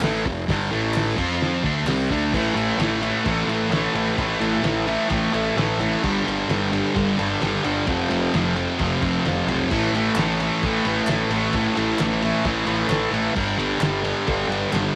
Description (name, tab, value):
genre	garage rock duo or trio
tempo	130 BPM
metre	4/4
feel	straight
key	A minor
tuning	A4 = 442 Hz
part	thick fuzz guitar	riff	0.0-14.9 s	F2 to F4	-23 LUFS	equal	distortion
part	fuzz picked electric bass	bass	0.0-14.9 s	F1 to F2	-31 LUFS	equal	overdrive
part	cloth-damped thuddy drum kit	drums	0.0-14.9 s	crash cymbal, hi-hat, kick drum, ride cymbal, snare drum	-30 LUFS	equal	none
part	group handclap	percussion	0.0-2.0, 10.2-14.8 s	none	-39 LUFS	equal	none
room	small room ambience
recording	none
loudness	-22 LUFS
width	mono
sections	0.0-2.3 A section; 2.3-15.0 B section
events	none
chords	0.0 F5; 0.7 A5; 1.2 F5; 2.3 A5; 6.0 G5; 7.9 F5; 9.7 A5; 13.4 G5